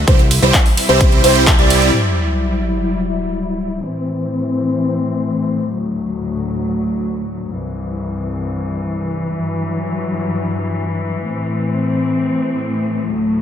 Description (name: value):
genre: EDM, festival progressive house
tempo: free time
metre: none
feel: none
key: E minor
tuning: A4 = 440 Hz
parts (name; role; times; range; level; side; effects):
- muted studio string section; sustained chords; 0.0-13.4 s; C2 to E4; -19 LUFS; left 2 dB; sidechain pumping, low-pass filter
- fat analog bass; bass; 0.0-1.9 s; C2; -17 LUFS; equal; sidechain pumping
- dark concert grand piano; arpeggios; 0.1-1.9 s; C5 to D5; -20 LUFS; right 1 dB; sidechain pumping, dub echo
- supersaw chords; riff; 0.1-1.9 s; G3 to D5; -18 LUFS; right 2 dB; phaser, sidechain pumping, low-pass filter, dub echo
- big-room dance drum kit; drums; 0.1-2.0 s; crash cymbal, handclaps, hi-hat, ride cymbal; -19 LUFS; right 1 dB; low-pass filter on hats, low-pass filter on cymbals, low-pass filter on snare, low-pass filter on room
- electronic kick drum; drums; 0.1-1.6 s; none; -12 LUFS; equal; none
- sub drop; sound effects; 1.9-3.8 s; none; -21 LUFS; equal; none
room: light reverb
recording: none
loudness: -15 LUFS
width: side -9 dB against mid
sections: 0.0-1.9 A section; 1.9-13.4 B section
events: drop 0.0-1.9; band accent 1.5; impact 1.9-3.8; filter sweep on string section 1.9-13.4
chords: 0.1 C; 1.9 Emadd9; 3.8 Am; 5.7 D; 7.5 C; 9.4 Emadd9; 11.2 Am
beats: free time